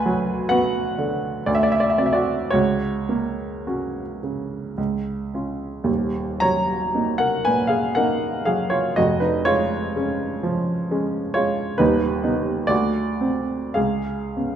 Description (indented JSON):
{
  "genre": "classical, romantic nocturne for solo piano",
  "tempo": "49-70 BPM",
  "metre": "3/4",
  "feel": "rubato",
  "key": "unclear",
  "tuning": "A4 = 438 Hz",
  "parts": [
    { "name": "warm upright piano", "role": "solo", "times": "0.0-14.6 s", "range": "D#1 to A#5", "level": "-20 LUFS", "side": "right 1 dB", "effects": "none" }
  ],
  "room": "wet recital hall reverb, RT60 1.4 s",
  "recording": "none",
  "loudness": "-20 LUFS",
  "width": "side -9 dB against mid",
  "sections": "0.0-14.6 A section",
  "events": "none",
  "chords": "0.0 Bm/D; 1.5 D7; 2.5 F#/C#; 4.8 C#; 5.9 D#m; 9.0 C#/E#; 11.8 B/D#; 12.7 D7; 13.8 C#7"
}